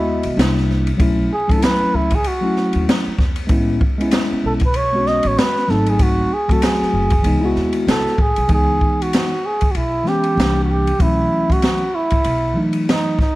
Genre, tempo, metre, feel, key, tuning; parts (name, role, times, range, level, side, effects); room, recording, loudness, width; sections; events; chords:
hip hop, jazz-hop; 96 BPM; 4/4; swing 61% on 16ths; C# minor; A4 = 440 Hz
breathy flugelhorn; melody; 0.0-13.4 s; D#4 to D#5; -20 LUFS; right 1 dB
mellow tine electric piano; accompaniment; 0.0-13.2 s; E3 to D#5; -20 LUFS; left 1 dB; slow stereo tremolo
upright bass; bass; 0.0-12.5 s; F#1 to E2; -22 LUFS; equal
open jazz drum kit; drums; 0.2-13.4 s; hi-hat, kick drum, ride cymbal, snare drum; -19 LUFS; equal
light reverb, studio ambience; dark, warm production, vinyl crackle; -15 LUFS; side -18 dB against mid
0.0-8.5 A section; 8.5-13.4 B section
flugelhorn solo 0.0-8.5
0.4 C9; 1.0 B7sus4 (rootless); 3.5 Amaj7; 5.7 G#7b9; 7.2 C#m9; 10.4 C9; 11.0 B7sus4